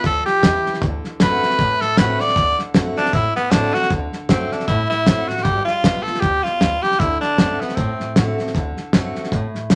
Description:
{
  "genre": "rockabilly",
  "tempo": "155 BPM",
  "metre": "4/4",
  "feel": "swing 58% on 8ths",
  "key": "D mixolydian",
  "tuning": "A4 = 438 Hz",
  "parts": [
    { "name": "raspy tenor saxophone", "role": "melody", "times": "0.0-8.2 s", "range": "B3 to D5", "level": "-21 LUFS", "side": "equal", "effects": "none" },
    { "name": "picked steel-string acoustic guitar", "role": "accompaniment", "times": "0.0-9.8 s", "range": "A2 to F#4", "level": "-28 LUFS", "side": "equal", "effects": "none" },
    { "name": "upright bass", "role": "bass", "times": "0.0-9.8 s", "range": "G1 to A2", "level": "-29 LUFS", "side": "equal", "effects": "none" },
    { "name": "cloth-damped thuddy drum kit", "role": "drums", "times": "0.0-9.8 s", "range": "hi-hat, kick drum, snare drum", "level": "-21 LUFS", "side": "equal", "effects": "none" }
  ],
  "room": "light reverb",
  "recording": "none",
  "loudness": "-19 LUFS",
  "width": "mono",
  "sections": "0.0-3.9 A section; 3.9-9.8 B section",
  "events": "tenor saxophone solo 0.0-3.9",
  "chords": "0.0 G7(no3); 0.8 D7; 5.5 G7; 7.0 D7"
}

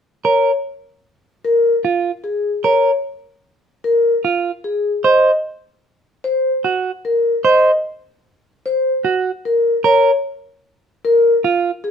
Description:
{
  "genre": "classical, minimalist pattern music",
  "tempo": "150 BPM",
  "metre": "6/4",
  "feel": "straight",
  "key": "Db major",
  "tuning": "A4 = 440 Hz",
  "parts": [
    { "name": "vibraphone with soft mallets", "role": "melody", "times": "0.2-11.9 s", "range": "Ab4 to Eb5", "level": "-15 LUFS", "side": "left 2 dB", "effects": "none" },
    { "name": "clean electric guitar", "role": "arpeggios", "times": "0.2-11.7 s", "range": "F4 to C5", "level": "-15 LUFS", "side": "right 5 dB", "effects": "none" }
  ],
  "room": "moderate studio reverb, RT60 0.8 s",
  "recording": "dark, warm production",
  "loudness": "-14 LUFS",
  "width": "side -8 dB against mid",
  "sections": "0.2-11.9 A section",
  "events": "none",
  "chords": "0.2 Db6 (rootless); 5.0 N.C.; 9.8 Db6 (rootless)"
}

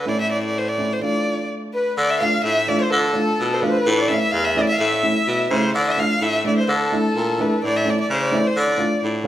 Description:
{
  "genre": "klezmer",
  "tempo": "128 BPM",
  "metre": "2/4",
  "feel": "straight",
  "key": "unclear",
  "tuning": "A4 = 436 Hz",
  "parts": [
    { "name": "rich violin", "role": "melody", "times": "0.0-9.0 s", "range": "A4 to F5", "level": "-22 LUFS", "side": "equal", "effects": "none" },
    { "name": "warm upright piano", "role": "accompaniment", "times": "0.0-9.3 s", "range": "A3 to F4", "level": "-23 LUFS", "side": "right 1 dB", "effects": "none" },
    { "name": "growling baritone saxophone", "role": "bass", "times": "0.0-9.3 s", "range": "E2 to D3", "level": "-23 LUFS", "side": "equal", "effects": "none" },
    { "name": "accordion", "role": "second line", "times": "1.8-9.0 s", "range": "A4 to F5", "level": "-25 LUFS", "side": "left 2 dB", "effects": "light tremolo tuning" }
  ],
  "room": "wet recital hall reverb, RT60 1.7 s",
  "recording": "minimal, uncompressed stereo recording",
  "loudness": "-17 LUFS",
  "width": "side -12 dB against mid",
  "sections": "0.0-2.0 A section; 2.0-9.3 A section",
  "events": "none",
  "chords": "0.1 A; 1.0 Dm; 3.9 A; 5.7 Dm; 7.6 A; 8.6 Dm"
}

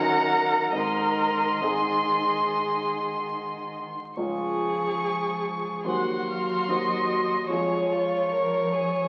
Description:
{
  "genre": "classical, slow romantic movement for piano quintet",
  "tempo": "68-75 BPM",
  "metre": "4/4",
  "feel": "rubato",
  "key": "Db major",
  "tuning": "A4 = 440 Hz",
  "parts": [
    { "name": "rich violin", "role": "melody", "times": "0.0-9.1 s", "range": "Bb5 to Db6", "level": "-31 LUFS", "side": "equal", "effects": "none" },
    { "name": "rich cello", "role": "second line", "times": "0.0-9.1 s", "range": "Eb3 to Gb3", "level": "-38 LUFS", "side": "equal", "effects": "none" },
    { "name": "rich violin", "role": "second line", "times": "0.0-9.1 s", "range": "F4 to Gb5", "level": "-35 LUFS", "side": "equal", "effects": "none" },
    { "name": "warm grand piano", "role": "accompaniment", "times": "0.0-9.1 s", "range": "Db2 to Eb5", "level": "-33 LUFS", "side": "equal", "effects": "none" },
    { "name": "warm viola", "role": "accompaniment", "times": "0.0-9.1 s", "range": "Ab4 to Gb5", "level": "-30 LUFS", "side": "equal", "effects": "none" }
  ],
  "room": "wet recital hall reverb, RT60 1.4 s",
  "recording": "very old 78 rpm record, vinyl crackle",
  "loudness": "-26 LUFS",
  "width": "mono",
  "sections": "0.0-9.1 A section",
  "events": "none",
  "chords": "0.0 Ebm7/Gb; 0.7 Ab; 4.2 Db; 5.9 Cdim/Eb; 7.5 Db/F"
}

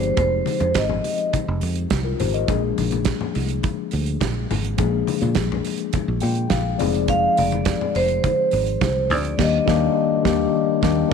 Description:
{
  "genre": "disco",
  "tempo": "104 BPM",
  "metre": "4/4",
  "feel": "straight",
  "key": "F dorian",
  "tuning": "A4 = 440 Hz",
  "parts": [
    { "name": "vibraphone with medium mallets", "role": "melody", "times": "0.0-1.3, 7.1-11.1 s", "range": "C5 to F5", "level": "-22 LUFS", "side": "right 2 dB", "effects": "none" },
    { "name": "mellow tine electric piano", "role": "accompaniment", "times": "0.0-11.1 s", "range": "Eb3 to G5", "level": "-23 LUFS", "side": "left 12 dB", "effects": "medium stereo tremolo" },
    { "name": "fingered electric bass", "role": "bass", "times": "0.0-11.0 s", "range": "F1 to Bb2", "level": "-24 LUFS", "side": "right 2 dB", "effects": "none" },
    { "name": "damped 70s drum kit", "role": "drums", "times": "0.0-11.0 s", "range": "crash cymbal, hi-hat, kick drum, snare drum", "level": "-25 LUFS", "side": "right 5 dB", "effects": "none" },
    { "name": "congas", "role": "percussion", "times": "0.2-9.2 s", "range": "none", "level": "-30 LUFS", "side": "left 8 dB", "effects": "none" }
  ],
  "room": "moderate echo chamber reverb, RT60 2.2 s",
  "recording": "1960s-style stereo",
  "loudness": "-18 LUFS",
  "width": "side -6 dB against mid",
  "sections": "0.0-11.1 A section",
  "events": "tine electric piano fill 5.9-7.1; band accent 9.4-11.1",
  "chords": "0.0 Fm7; 2.5 Bb7; 6.8 Fm7; 9.4 Ebmaj7"
}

